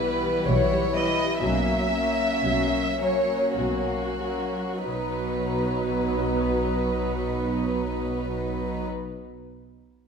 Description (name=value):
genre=classical, slow romantic movement for symphony orchestra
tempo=46-67 BPM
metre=3/4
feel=rubato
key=B major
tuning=A4 = 441 Hz
part: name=warm chamber violin section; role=melody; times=0.0-8.9 s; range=F#4 to E5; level=-27 LUFS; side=equal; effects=none
part: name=warm symphonic violin section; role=second line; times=0.0-8.8 s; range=A#3 to E4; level=-30 LUFS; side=left 3 dB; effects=none
part: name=dark symphonic viola section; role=accompaniment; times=0.0-8.9 s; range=E3 to G3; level=-31 LUFS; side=equal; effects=none
part: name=dark studio cello section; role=bass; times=0.0-8.9 s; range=B2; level=-31 LUFS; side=right 3 dB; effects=none
part: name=warm symphonic double bass section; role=bass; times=0.0-8.8 s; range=B1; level=-31 LUFS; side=right 2 dB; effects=none
room=wet scoring stage reverb, RT60 1.6 s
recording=minimal, uncompressed stereo recording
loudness=-23 LUFS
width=side -6 dB against mid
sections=0.0-4.8 A section; 4.8-8.6 B section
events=slowing down 0.0-4.8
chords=0.0 Em/B; 1.4 F#7/B